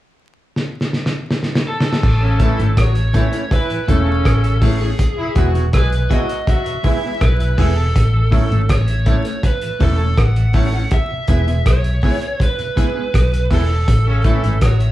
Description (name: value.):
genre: roots reggae.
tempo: 81 BPM.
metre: 4/4.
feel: straight.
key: unclear.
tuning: A4 = 440 Hz.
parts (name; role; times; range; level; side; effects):
cloth-damped thuddy drum kit; drums; 0.6-14.9 s; crash cymbal, hi-hat, kick drum, rim click, snare drum; -18 LUFS; equal; none.
lead guitar through a small cranked amp; melody; 1.7-14.9 s; G#4 to F#5; -24 LUFS; right 1 dB; overdrive.
vintage muted fingered electric bass; bass; 2.0-14.9 s; E1 to B1; -16 LUFS; equal; none.
warm horn section; second line; 2.2-7.5, 14.1-14.8 s; C#3 to G#4; -25 LUFS; equal; none.
tonewheel organ; accompaniment; 2.2-14.9 s; E2 to E4; -30 LUFS; left 2 dB; slow rotary speaker.
mellow electric guitar; accompaniment; 2.4-14.5 s; G#3 to A4; -27 LUFS; right 1 dB; none.
bright upright piano; stabs; 2.4-14.4 s; E4 to E5; -30 LUFS; equal; analog delay.
room: moderate large studio reverb, RT60 1.1 s.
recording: band playing live in one room, vinyl crackle.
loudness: -14 LUFS.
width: side -15 dB against mid.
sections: 0.0-2.0 A section; 2.0-14.9 B section.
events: drum fill 0.5-2.0.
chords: 0.0 N.C.; 2.0 A; 5.0 E; 8.0 A; 10.9 E; 13.9 A.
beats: 0.55 1.29 | 2.03 2.77 3.51 4.25 | 4.99 5.73 6.47 7.21 | 7.95 8.69 9.44 10.18 | 10.92 11.66 12.40 13.14 | 13.88 14.62.